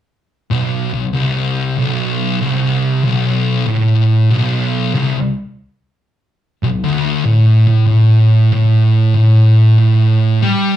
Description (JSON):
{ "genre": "metal", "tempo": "71 BPM", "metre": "4/4", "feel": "straight", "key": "B minor", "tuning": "A4 = 440 Hz", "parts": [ { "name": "thick fuzz guitar", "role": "riff", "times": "0.5-10.8 s", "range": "B1 to G3", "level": "-14 LUFS", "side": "left 5 dB", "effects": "distortion" }, { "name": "thick fuzz guitar", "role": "riff", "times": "0.5-10.8 s", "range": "B1 to G3", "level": "-14 LUFS", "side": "right 4 dB", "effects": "distortion" } ], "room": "light reverb", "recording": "live gig heard through the venue's PA, club reverb", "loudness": "-11 LUFS", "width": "side -12 dB against mid", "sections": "0.5-10.8 A section", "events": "none", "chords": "0.5 Bm; 7.3 N.C.", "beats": "| 0.51 1.36 2.20 3.05 | 3.89 4.74 5.58 6.43 | 7.27 8.11 8.96 9.80 | 10.64" }